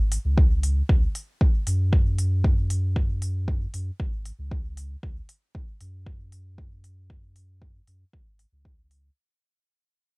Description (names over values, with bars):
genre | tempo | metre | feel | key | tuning
dub techno | 116 BPM | 4/4 | straight | unclear | A4 = 440 Hz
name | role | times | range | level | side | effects
pure sine sub bass | bass | 0.0-9.1 s | G#1 to F#2 | -26 LUFS | equal | tube saturation, sidechain pumping
electronic hi-hat | drums | 0.1-9.0 s | none | -35 LUFS | left 1 dB | cassette tape
electronic kick drum | drums | 0.4-8.8 s | none | -22 LUFS | equal | cassette tape
room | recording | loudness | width
little or no reverb | home recording on cassette | -22 LUFS | side -39 dB against mid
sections
0.0-9.2 A section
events
fade-out 0.0-9.2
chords
none